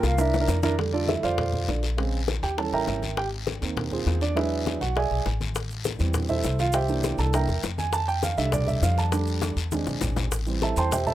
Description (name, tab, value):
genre	Afro-Cuban jazz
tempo	202 BPM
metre	4/4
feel	straight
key	F major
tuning	A4 = 438 Hz
part	breathy mellow concert flute	melody	0.0-0.5 s	E5 to F5	-29 LUFS	left 1 dB	plate reverb
part	dark grand piano	accompaniment	0.0-11.1 s	Db3 to C6	-27 LUFS	right 4 dB	plate reverb
part	upright bass	bass	0.0-11.1 s	Ab1 to F2	-27 LUFS	left 1 dB	none
part	bongos	percussion	0.0-11.1 s	none	-32 LUFS	left 7 dB	none
part	congas	percussion	0.0-11.1 s	none	-35 LUFS	left 2 dB	none
part	guiro	percussion	0.0-11.1 s	none	-37 LUFS	left 7 dB	none
part	maracas	percussion	0.0-0.8, 5.6-11.1 s	none	-38 LUFS	right 6 dB	none
room	light reverb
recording	rough home demo mix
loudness	-23 LUFS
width	side -13 dB against mid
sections	0.8-10.3 A section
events	drum fill 0.0-0.8, 9.4-10.3; grand piano solo 0.8-11.1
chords	0.2 C7; 0.8 F6; 2.0 Bbm7; 2.6 Eb7b9; 3.2 Ab69; 4.4 E7; 5.6 Am7; 6.7 C7; 7.9 F6; 9.7 E7b13; 10.3 Am7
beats	0.19 0.49 | 0.79 1.09 1.38 1.68 | 1.98 2.28 2.58 2.87 | 3.17 3.47 3.77 4.07 | 4.36 4.66 4.96 5.26 | 5.55 5.85 6.15 6.45 | 6.75 7.04 7.34 7.64 | 7.93 8.23 8.53 8.83 | 9.12 9.42 9.72 10.02 | 10.32 10.61 10.91